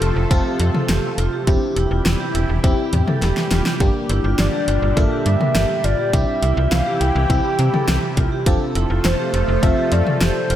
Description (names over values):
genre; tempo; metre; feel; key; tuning
synth-pop; 103 BPM; 4/4; straight; unclear; A4 = 440 Hz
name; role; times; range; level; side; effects
FM electric piano; accompaniment; 0.0-10.6 s; Bb3 to A4; -25 LUFS; left 1 dB; chorus, phaser
lush unison pad; sustained chords; 0.0-10.6 s; Bb2 to A4; -25 LUFS; equal; chorus, phaser
vibraphone with medium hard mallets; arpeggios; 0.0-10.6 s; D4 to Bb4; -27 LUFS; right 6 dB; analog delay
slap-like FM bass; bass; 0.0-10.6 s; E1 to C3; -19 LUFS; equal; none
pop drum kit; drums; 0.0-10.6 s; hi-hat, kick drum, snare drum, toms; -21 LUFS; equal; none
hollow clarinet-like synth lead; melody; 4.4-10.6 s; C5 to G5; -23 LUFS; left 1 dB; chorus, phaser, analog delay
room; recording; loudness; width
moderate lush hall reverb, RT60 2.5 s; dreamy mix soaked in reverb; -16 LUFS; side -11 dB against mid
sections
0.0-10.6 A section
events
drum fill 3.2-3.8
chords
0.0 F; 1.5 C/E; 3.8 Gm; 6.1 C; 8.5 F